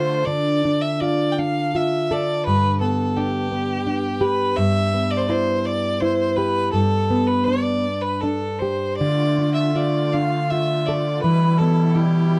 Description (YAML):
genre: celtic folk, Celtic slow air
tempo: 77-86 BPM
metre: 3/4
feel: rubato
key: D dorian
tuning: A4 = 441 Hz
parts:
  - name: bright fiddle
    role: melody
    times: 0.0-12.4 s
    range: G4 to G5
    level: -25 LUFS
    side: equal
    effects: none
  - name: nylon-string guitar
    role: accompaniment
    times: 0.0-12.4 s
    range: G2 to A4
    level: -22 LUFS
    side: equal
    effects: none
  - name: musette accordion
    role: sustained chords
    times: 0.0-0.2, 9.0-12.4 s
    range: B2 to F4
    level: -33 LUFS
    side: equal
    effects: none
room: light reverb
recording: dry, close 1970s-style studio recording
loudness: -21 LUFS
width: mono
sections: 0.3-12.4 A section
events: none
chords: 0.3 Dm; 2.5 G; 4.6 Em/G; 6.7 G; 9.0 Dm; 11.2 Em